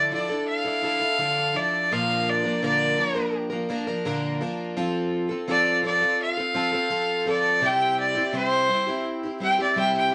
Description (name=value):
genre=rock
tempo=84 BPM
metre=4/4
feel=straight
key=unclear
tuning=A4 = 440 Hz
part: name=clear fiddle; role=melody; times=0.0-10.1 s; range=C5 to G5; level=-25 LUFS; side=equal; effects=none
part: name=picked plugged-in twelve-string acoustic guitar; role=accompaniment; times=0.0-10.1 s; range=Bb2 to Bb4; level=-29 LUFS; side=equal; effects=none
room=moderate studio ambience, RT60 0.5 s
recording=vinyl crackle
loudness=-24 LUFS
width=mono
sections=0.0-10.1 A section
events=fiddle solo 0.0-10.1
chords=0.0 Dmadd9; 1.9 Bb; 4.8 F; 7.6 C